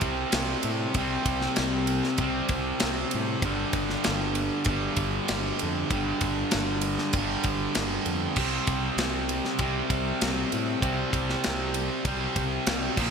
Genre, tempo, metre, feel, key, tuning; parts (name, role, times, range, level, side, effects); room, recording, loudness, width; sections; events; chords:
hard rock; 97 BPM; 4/4; straight; A4 = 439 Hz
distorted electric guitar; riff; 0.0-13.1 s; G2 to C4; -27 LUFS; equal; distortion
fuzz fingered electric bass; bass; 0.0-13.1 s; G1 to A2; -33 LUFS; equal; overdrive
tight metal drum kit; drums; 0.0-13.1 s; crash cymbal, kick drum, ride cymbal, snare drum; -29 LUFS; equal; gated reverb
moderate lush hall reverb, RT60 2.7 s; bright 1980s-style digital production; -24 LUFS; side -6 dB against mid
0.0-13.1 A section
0.0 C5; 3.4 G5; 8.4 C5